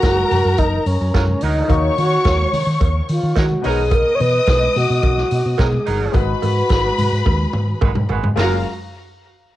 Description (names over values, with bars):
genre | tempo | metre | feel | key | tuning
disco | 108 BPM | 4/4 | straight | F# major | A4 = 441 Hz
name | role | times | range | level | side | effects
reedy wooden-headed alto flute | melody | 0.0-7.8 s | C#4 to C#5 | -20 LUFS | equal | cassette tape
dark studio string section | second line | 0.0-8.6 s | F#4 to D#6 | -22 LUFS | left 2 dB | cassette tape, tape echo
clear grand piano | accompaniment | 0.0-8.6 s | B2 to E#5 | -30 LUFS | left 9 dB | cassette tape
fingered electric bass | bass | 0.0-8.6 s | F#1 to D#3 | -19 LUFS | equal | none
vintage drum kit | drums | 0.0-8.5 s | hi-hat, kick drum, snare drum, toms | -21 LUFS | equal | cassette tape
congas | percussion | 0.0-8.6 s | none | -32 LUFS | left 5 dB | none
cowbell | percussion | 0.0-8.6 s | none | -28 LUFS | right 11 dB | none
clear horn section | stabs | 1.1-8.6 s | F#3 to B4 | -26 LUFS | right 9 dB | cassette tape
room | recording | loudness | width
light reverb, studio reverb | home recording on cassette | -15 LUFS | side -14 dB against mid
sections
0.0-8.4 A section; 8.4-9.6 B section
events
drum fill 7.3-8.4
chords
0.0 F#maj7; 1.7 D#m7; 3.6 Badd9; 6.1 G#m7; 8.4 F#maj7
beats
0.03 0.59 1.14 | 1.70 2.25 2.81 3.37 | 3.92 4.48 5.03 5.59 | 6.15 6.70 7.26 7.82 | 8.38